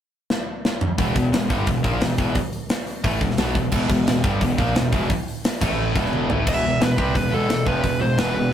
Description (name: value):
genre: heavy metal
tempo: 175 BPM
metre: 4/4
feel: straight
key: E phrygian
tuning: A4 = 441 Hz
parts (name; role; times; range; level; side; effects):
- tight metal drum kit; drums; 0.3-8.3 s; crash cymbal, hi-hat, kick drum, snare drum, toms; -23 LUFS; equal; none
- high-gain distorted guitar; riff; 1.0-8.5 s; E2 to C4; -28 LUFS; right 5 dB; distortion
- scooped high-gain guitar; riff; 1.0-8.5 s; E2 to C4; -24 LUFS; left 3 dB; distortion
- fuzz picked electric bass; bass; 1.0-8.5 s; E1 to C2; -25 LUFS; equal; overdrive
- dark smooth lead guitar; melody; 6.5-8.5 s; A4 to E5; -24 LUFS; right 1 dB; overdrive
room: moderate small room reverb, RT60 0.6 s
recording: rough rehearsal-room recording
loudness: -19 LUFS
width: side -10 dB against mid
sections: 1.0-6.5 A section; 6.5-8.5 B section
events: drum fill 0.3-1.0, 6.1-6.5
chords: 0.0 N.C.; 1.0 Em; 5.6 A5; 6.0 E5; 6.5 Em